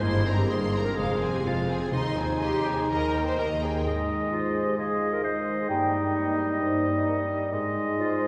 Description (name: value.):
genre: classical, dramatic, fast romantic movement for symphony orchestra.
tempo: 123-133 BPM.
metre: 4/4.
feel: straight.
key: Ab major.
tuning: A4 = 440 Hz.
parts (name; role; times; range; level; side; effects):
warm symphonic violin section; melody; 0.0-3.9 s; F5 to C6; -39 LUFS; equal; none.
mellow clarinet; second line; 0.0-8.3 s; Eb4 to C5; -32 LUFS; equal; none.
rich symphonic violin section; second line; 0.0-3.9 s; Ab4 to Eb5; -39 LUFS; equal; none.
rich symphonic viola section; accompaniment; 0.0-3.9 s; Ab3 to C5; -35 LUFS; equal; none.
concert harp; arpeggios; 0.0-8.3 s; F2 to Db5; -35 LUFS; equal; none.
rich chamber double bass section; bass; 0.0-3.8 s; F1 to Eb2; -35 LUFS; equal; none.
rich symphonic cello section; bass; 0.0-3.8 s; Eb2 to G2; -35 LUFS; equal; none.
mellow large flute ensemble; second line; 3.9-8.3 s; Bb4 to G5; -36 LUFS; equal; none.
warm oboe; second line; 3.9-8.3 s; Eb5; -34 LUFS; equal; none.
warm bassoon; accompaniment; 3.9-8.3 s; G3 to Ab3; -34 LUFS; equal; none.
dark French horn section; sustained chords; 3.9-8.3 s; Ab3 to Eb4; -34 LUFS; equal; none.
room: wet church reverb, RT60 3.5 s.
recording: recorded in a church or concert hall.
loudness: -26 LUFS.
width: mono.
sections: 0.0-3.9 A section; 3.9-8.3 B section.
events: none.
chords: 0.0 C5/G; 1.0 Fm; 1.9 Ab/Eb; 2.9 Eb; 3.9 Ab; 5.7 Eb7/G; 7.5 Ab.